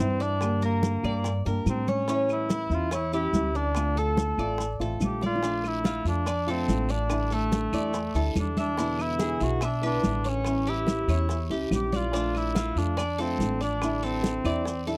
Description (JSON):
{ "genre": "latin, Cuban son and guajira", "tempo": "143 BPM", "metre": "4/4", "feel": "straight", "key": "unclear", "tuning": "A4 = 436 Hz", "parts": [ { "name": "mellow cor anglais", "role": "melody", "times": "0.0-14.9 s", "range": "A3 to A4", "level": "-32 LUFS", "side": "equal", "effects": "none" }, { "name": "nylon-string guitar", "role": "accompaniment", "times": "0.0-15.0 s", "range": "B2 to G4", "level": "-35 LUFS", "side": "equal", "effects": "none" }, { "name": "Cuban tres", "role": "arpeggios", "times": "0.0-15.0 s", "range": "C#4 to E5", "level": "-36 LUFS", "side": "equal", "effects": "none" }, { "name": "upright bass", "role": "bass", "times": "0.0-15.0 s", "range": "A1 to A2", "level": "-32 LUFS", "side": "equal", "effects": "none" }, { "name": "maracas", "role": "percussion", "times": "0.0-15.0 s", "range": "none", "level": "-47 LUFS", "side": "equal", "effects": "none" }, { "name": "bongos", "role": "percussion", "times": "0.2-15.0 s", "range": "none", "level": "-40 LUFS", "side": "equal", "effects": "none" }, { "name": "congas", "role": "percussion", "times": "0.2-15.0 s", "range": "none", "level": "-33 LUFS", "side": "equal", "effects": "none" }, { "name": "claves", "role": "percussion", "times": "0.4-14.7 s", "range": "none", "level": "-46 LUFS", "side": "equal", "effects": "none" }, { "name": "guiro", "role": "percussion", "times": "5.4-15.0 s", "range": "none", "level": "-49 LUFS", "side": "equal", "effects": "none" } ], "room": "light reverb", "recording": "dry, close 1970s-style studio recording", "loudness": "-27 LUFS", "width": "mono", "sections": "0.0-15.0 A section", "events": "drum fill 5.2", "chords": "0.4 Gm; 2.1 A7; 3.8 Dm7; 5.4 Bbmaj7; 7.1 A7sus4; 8.8 E7; 10.5 A7; 12.1 Bbmaj7; 13.8 A7sus4", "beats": "| 0.41 0.83 1.25 1.67 | 2.08 2.50 2.92 3.34 | 3.75 4.17 4.59 5.01 | 5.43 5.85 6.27 6.68 | 7.10 7.52 7.94 8.36 | 8.78 9.20 9.62 10.04 | 10.46 10.88 11.30 11.72 | 12.14 12.56 12.98 13.40 | 13.82 14.24 14.66" }